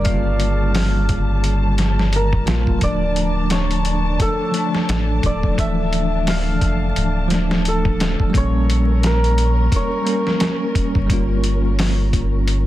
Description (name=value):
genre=trip hop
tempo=87 BPM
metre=4/4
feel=swing 58% on 16ths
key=unclear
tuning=A4 = 441 Hz
part: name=santur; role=melody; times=0.0-12.7 s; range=A4 to F5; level=-25 LUFS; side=equal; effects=tape echo
part: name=bell-like tine electric piano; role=accompaniment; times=0.0-12.7 s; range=Db3 to F4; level=-23 LUFS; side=equal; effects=fast stereo tremolo
part: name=dark studio string section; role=sustained chords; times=0.0-12.7 s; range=Db3 to A5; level=-28 LUFS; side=left 1 dB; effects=none
part: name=round analog bass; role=bass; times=0.0-12.7 s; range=D1 to Bb1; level=-19 LUFS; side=equal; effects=tube saturation
part: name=dusty soul sampler-style drum kit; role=drums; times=0.0-12.7 s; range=hi-hat, kick drum, snare drum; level=-21 LUFS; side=equal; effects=overdrive
room=little or no reverb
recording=dense, heavily limited modern master, vinyl crackle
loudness=-16 LUFS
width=side -14 dB against mid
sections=0.0-12.7 A section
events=none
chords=0.0 Bbm6; 2.8 Dm; 8.3 Bbm6